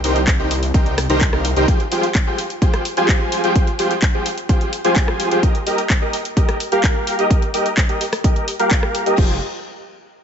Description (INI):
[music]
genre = EDM, festival progressive house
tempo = 128 BPM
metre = 4/4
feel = straight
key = F minor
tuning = A4 = 441 Hz
[part]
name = dense compressed supersaw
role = riff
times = 0.0-9.4 s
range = Eb4 to Bb5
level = -19 LUFS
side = equal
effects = sidechain pumping, low-pass filter, tape echo
[part]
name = wide detuned saw bass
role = bass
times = 0.0-1.7, 9.2-9.4 s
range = F1 to C2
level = -21 LUFS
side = equal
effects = chorus, sidechain pumping
[part]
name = house drum kit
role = drums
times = 0.0-9.3 s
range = crash cymbal, handclaps, hi-hat, rim click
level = -24 LUFS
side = left 1 dB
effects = small room ambience
[part]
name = electronic kick drum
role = drums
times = 0.3-9.3 s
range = none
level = -17 LUFS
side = equal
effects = small room ambience
[sound]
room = light reverb, digital ambience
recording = nothing above 7.8 kHz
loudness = -15 LUFS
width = side -8 dB against mid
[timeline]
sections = 0.0-9.2 A section; 9.2-10.2 B section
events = filter sweep on supersaw synth 0.0-9.2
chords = 0.0 Cm7; 1.7 Fmadd9; 5.4 Eb; 9.2 Fmadd9